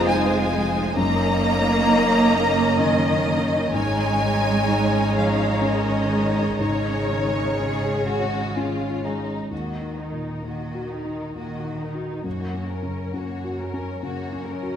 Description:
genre	cinematic, emotional film score for orchestra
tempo	60-68 BPM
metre	3/4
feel	rubato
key	unclear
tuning	A4 = 439 Hz
part	rich symphonic violin section	melody	0.0-14.8 s	Bb4 to Bb5	-28 LUFS	left 3 dB	none
part	rich symphonic violin section	second line	0.0-14.8 s	Eb4 to Eb5	-27 LUFS	left 2 dB	none
part	dark concert grand piano	accompaniment	0.0-14.8 s	Eb2 to Bb4	-28 LUFS	left 3 dB	none
part	warm studio viola section	accompaniment	0.0-14.8 s	Ab3 to Eb4	-28 LUFS	right 3 dB	none
part	dark studio double bass section	bass	0.0-9.3 s	F1 to Ab1	-26 LUFS	right 2 dB	none
part	warm studio cello section	bass	0.0-14.8 s	Gb2 to Bb3	-28 LUFS	right 2 dB	none
room	wet scoring stage reverb, RT60 1.6 s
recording	none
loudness	-20 LUFS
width	side -9 dB against mid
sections	0.0-9.5 A section; 9.5-14.8 B section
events	none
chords	0.0 Fm7; 1.0 Ebm7/Gb; 3.7 Absus4; 9.5 Ebm; 12.3 Gb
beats	0.07 | 0.97 1.87 2.79 | 3.75 4.68 5.62 | 6.60 7.58 8.56 | 9.51 10.44 11.36 | 12.26 13.15 14.04

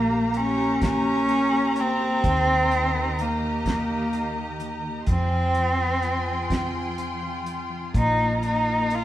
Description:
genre	acoustic folk-pop ballad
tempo	42 BPM (dotted quarters)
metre	6/8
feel	straight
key	F minor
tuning	A4 = 436 Hz
part	warm cello	melody	0.0-9.0 s	Bb3 to F4	-23 LUFS	equal	none
part	mellow tine electric piano	accompaniment	0.0-9.0 s	Eb3 to G4	-30 LUFS	equal	medium stereo tremolo
part	clear studio string section	sustained chords	0.0-9.0 s	F4 to C6	-31 LUFS	left 1 dB	none
part	hollow-body short-scale fingered electric bass	bass	0.0-9.0 s	Bb1 to F2	-29 LUFS	equal	none
part	cloth-damped thuddy drum kit	drums	0.3-9.0 s	hi-hat, kick drum, snare drum	-27 LUFS	equal	none
room	wet large studio reverb, RT60 1.2 s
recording	band playing live in one room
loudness	-21 LUFS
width	side -13 dB against mid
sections	0.0-9.0 A section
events	none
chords	0.0 Gdim/Bb; 2.2 Eb; 5.1 Fmadd9; 7.9 Bbsus4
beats	0.83 | 2.25 3.67 | 5.08 6.51 | 7.95

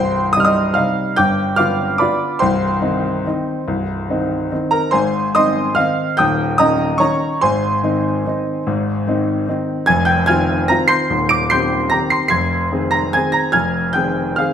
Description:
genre	classical, piano waltz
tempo	146 BPM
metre	3/4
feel	uneven beats, rubato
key	C minor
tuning	A4 = 439 Hz
part	clear baby grand piano	solo	0.0-14.5 s	C1 to D7	-14 LUFS	equal	none
room	moderate recital hall reverb, RT60 1.4 s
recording	none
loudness	-15 LUFS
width	side -8 dB against mid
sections	0.0-14.5 A section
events	none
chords	0.0 Cm; 1.2 G7; 2.4 Cm; 4.9 Ab; 6.2 Eb7; 7.4 Ab; 9.9 Fm7; 11.1 Cm/Eb; 12.3 Fm7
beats	0.33 0.76 | 1.18 1.59 2.01 | 2.42 2.81 3.24 | 3.67 4.09 4.51 | 4.93 5.34 5.76 | 6.18 6.58 7.00 | 7.41 7.82 8.24 | 8.65 9.05 9.47 | 9.87 10.27 10.69 | 11.09 11.49 11.90 | 12.31 12.71 13.13 | 13.53 13.94 14.36

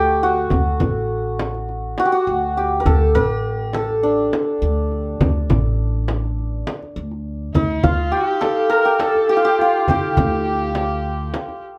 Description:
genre	Persian modal ensemble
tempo	103 BPM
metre	4/4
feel	straight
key	D dastgah chahargah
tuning	A4 = 440 Hz
part	santur	melody	0.0-11.8 s	D4 to Bb4+45c	-22 LUFS	equal	none
part	upright bass	bass	0.0-11.3 s	A1 to D3	-25 LUFS	equal	none
part	tombak	percussion	0.2-11.6 s	none	-28 LUFS	equal	none
part	frame drum	percussion	0.5-11.5 s	none	-26 LUFS	equal	none
part	rich kamancheh	second line	7.5-11.6 s	Eb4+44c to Bb4	-27 LUFS	equal	none
room	wet studio reverb, RT60 0.5 s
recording	band playing live in one room, faint mains hum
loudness	-19 LUFS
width	mono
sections	0.0-7.5 A section; 7.5-11.8 B section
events	none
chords	none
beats	| 0.52 1.10 1.69 2.27 | 2.86 3.44 4.03 4.62 | 5.20 5.79 6.37 6.96 | 7.54 8.12 8.71 9.29 | 9.88 10.46 11.05 11.63

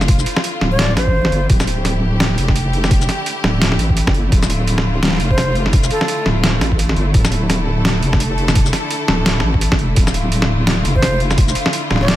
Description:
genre	half-time drum and bass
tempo	170 BPM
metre	4/4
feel	swing 59% on 16ths, half-time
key	D minor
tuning	A4 = 438 Hz
part	clear studio string section	sustained chords	0.0-12.2 s	D3 to A4	-23 LUFS	left 1 dB	sidechain pumping
part	deep soft wobble bass	bass	0.0-12.2 s	D1 to A1	-17 LUFS	equal	chorus, tube saturation
part	boom bap sampler-style drum kit	drums	0.0-12.2 s	hi-hat, shaker, snare drum	-19 LUFS	equal	overdrive, small room ambience
part	electronic kick drum	drums	0.1-11.5 s	none	-16 LUFS	equal	overdrive, small room ambience
part	breathy bright concert flute	melody	0.7-1.5, 5.3-6.3, 11.0-12.2 s	A4 to D5	-24 LUFS	equal	dub echo
room	light reverb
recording	none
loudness	-13 LUFS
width	side -14 dB against mid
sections	0.0-12.2 A section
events	none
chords	0.0 Dmadd9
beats	| 0.09 0.44 0.79 1.14 | 1.50 1.85 2.20 2.56 | 2.91 3.26 3.61 3.97 | 4.32 4.67 5.03 5.38 | 5.73 6.08 6.44 6.79 | 7.14 7.50 7.85 8.20 | 8.55 8.91 9.26 9.61 | 9.97 10.32 10.67 11.03 | 11.38 11.73 12.09

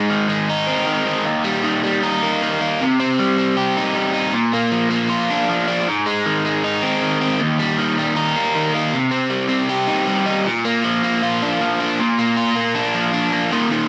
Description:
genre	rock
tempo	157 BPM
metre	4/4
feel	straight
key	unclear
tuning	A4 = 439 Hz
part	overdriven electric guitar	solo	0.0-13.9 s	Eb2 to G4	-19 LUFS	equal	none
room	wet studio reverb, RT60 0.5 s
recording	none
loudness	-19 LUFS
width	mono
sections	0.0-12.0 A section; 12.0-13.5 B section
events	none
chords	0.0 Ab; 1.3 Eb; 2.8 Cm; 4.3 Bb; 5.9 Ab; 7.4 Eb; 8.9 Cm; 10.5 Bb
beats	0.10 0.48 0.87 | 1.25 1.64 2.02 2.41 | 2.79 3.18 3.56 3.95 | 4.33 4.72 5.10 5.49 | 5.87 6.25 6.63 7.02 | 7.40 7.78 8.17 8.55 | 8.93 9.31 9.70 10.08 | 10.46 10.84 11.22 11.61 | 11.99 12.37 12.75 13.13 | 13.51

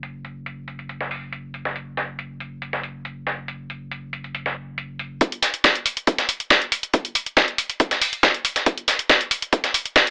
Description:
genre	driving peak-time techno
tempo	139 BPM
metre	4/4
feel	straight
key	unclear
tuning	A4 = 440 Hz
part	saturated sub bass	bass	0.0-5.2 s	F#1	-40 LUFS	equal	overdrive, sidechain pumping, low-pass filter
part	dusty soul sampler-style drum kit	drums	0.0-10.1 s	hi-hat, snare drum	-23 LUFS	equal	sidechain pumping on hats, high-pass filter on hats, low-pass filter on hats, high-pass filter on snare, low-pass filter on snare
part	electronic hi-hat	drums	5.2-10.1 s	none	-26 LUFS	equal	sidechain pumping on hats
part	electronic kick drum	drums	5.2-10.0 s	none	-24 LUFS	equal	high-pass filter on kick, high-pass filter on room
room	little or no reverb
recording	AM radio sound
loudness	-22 LUFS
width	mono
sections	0.0-5.2 A section; 5.2-10.1 B section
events	build-up 5.2-10.1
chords	none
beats	| 0.03 0.46 0.89 1.33 | 1.76 2.19 2.62 3.05 | 3.48 3.92 4.35 4.78 | 5.21 5.64 6.07 6.51 | 6.94 7.37 7.80 8.23 | 8.66 9.10 9.53 9.96

